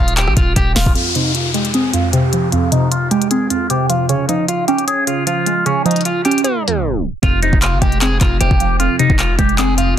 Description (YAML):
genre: hip hop, trap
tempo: 153 BPM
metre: 4/4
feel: half-time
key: F minor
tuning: A4 = 440 Hz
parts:
  - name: electric guitar at the edge of break-up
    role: melody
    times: 0.0-9.9 s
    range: Db4 to Ab4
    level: -19 LUFS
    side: equal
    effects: phaser, low-pass filter, ping-pong delay
  - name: hard-hitting 808-style bass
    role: bass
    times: 0.0-1.0, 7.2-10.0 s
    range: Eb1 to Bb1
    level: -17 LUFS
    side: equal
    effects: none
  - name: trap drum kit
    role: drums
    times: 0.1-9.9 s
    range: handclaps, hi-hat, kick drum, rim click, snare drum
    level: -17 LUFS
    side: equal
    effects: none
  - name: glassy wavetable pluck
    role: accompaniment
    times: 1.0-10.0 s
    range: F2 to Db5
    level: -17 LUFS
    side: right 1 dB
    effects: chorus, low-pass filter
  - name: downlifter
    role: sound effects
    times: 1.0-4.1 s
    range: none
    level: -24 LUFS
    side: left 2 dB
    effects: none
room: light reverb, digital ambience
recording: dense, heavily limited modern master, tape stop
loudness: -13 LUFS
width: side -10 dB against mid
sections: 1.0-7.2 A section; 7.2-10.0 B section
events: drum fill 0.6-1.0; filter sweep 1.0-7.2; break 6.4-7.2; tape stop 6.4-7.2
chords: 0.0 Eb5; 1.0 Fm; 4.1 Db; 7.2 Fm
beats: 0.17 0.56 | 0.95 1.35 1.74 2.13 | 2.52 2.92 3.31 3.70 | 4.09 4.49 4.88 5.27 | 5.66 6.05 6.45 6.84 | 7.23 7.62 8.01 8.41 | 8.80 9.19 9.58 9.97